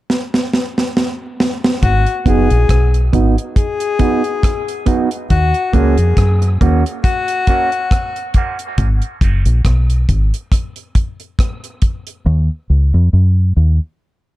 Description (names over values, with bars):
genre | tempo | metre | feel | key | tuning
dub reggae | 69 BPM | 4/4 | swing 56% on 16ths | G# dorian | A4 = 440 Hz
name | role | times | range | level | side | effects
deep reggae drum kit | drums | 0.1-12.2 s | hi-hat, kick drum, rim click, snare drum | -16 LUFS | equal | none
warm tenor saxophone | second line | 1.8-8.3 s | F#4 to G#4 | -20 LUFS | left 5 dB | high-pass filter, dub echo
deep dub fingered electric bass | bass | 1.8-13.8 s | F#1 to F#2 | -12 LUFS | equal | none
mellow electric guitar | accompaniment | 2.3-9.4 s | A#3 to F#4 | -20 LUFS | right 5 dB | high-pass filter, low-pass filter, dub echo
room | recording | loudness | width
light reverb, small room ambience | dark, warm production | -13 LUFS | side -16 dB against mid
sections
0.0-1.8 A section; 1.8-14.4 B section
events
drum fill 0.1-1.8; part muted 12.3-14.4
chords
0.0 N.C.; 1.8 G#m7; 5.3 D#m7; 8.8 G#m7; 12.3 D#m7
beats
0.09 0.96 | 1.83 2.70 3.57 4.43 | 5.30 6.17 7.04 7.91 | 8.78 9.65 10.52 11.39 | 12.26 13.13